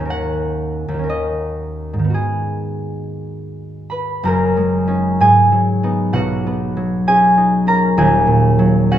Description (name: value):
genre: classical, solo harp piece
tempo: 55-66 BPM (dotted quarters)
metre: 6/8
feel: rubato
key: G# minor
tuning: A4 = 438 Hz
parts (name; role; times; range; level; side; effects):
- concert harp; solo; 0.0-9.0 s; D#1 to B5; -14 LUFS; equal; none
room: moderate recital hall reverb, RT60 1.2 s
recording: minimal, uncompressed stereo recording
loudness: -14 LUFS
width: side -11 dB against mid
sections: 0.0-4.3 A section; 4.3-9.0 B section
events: none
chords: 0.1 D#m7; 2.1 G#m7; 4.3 F#69; 5.2 G#m7; 6.1 B69; 8.0 D#m7